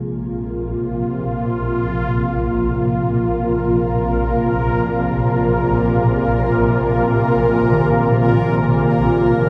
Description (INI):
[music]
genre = dark ambient drone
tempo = free time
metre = none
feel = none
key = unclear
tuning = A4 = 441 Hz
[part]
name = sweeping resonant pad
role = sustained chords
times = 0.0-9.5 s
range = C3 to Bb4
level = -20 LUFS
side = equal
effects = chorus
[part]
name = bronze singing bowl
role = arpeggios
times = 0.0-9.5 s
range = Eb3 to Ab4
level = -29 LUFS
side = equal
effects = diffuse ambient delay
[part]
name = swarming drone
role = drone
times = 0.0-9.5 s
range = Bb1 to Bb2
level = -22 LUFS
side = equal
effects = built-in reverb
[part]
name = bubbling stepped-filter texture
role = texture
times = 0.1-9.5 s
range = Bb4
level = -34 LUFS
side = equal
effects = chorus, built-in reverb, shimmer reverb
[sound]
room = wet huge ambient reverb, RT60 7.6 s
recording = none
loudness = -18 LUFS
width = mono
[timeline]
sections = 0.0-9.5 A section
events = fade-in on synth texture 0.0-9.5; fade-in on singing bowl 0.0-9.5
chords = 0.0 Bbsus2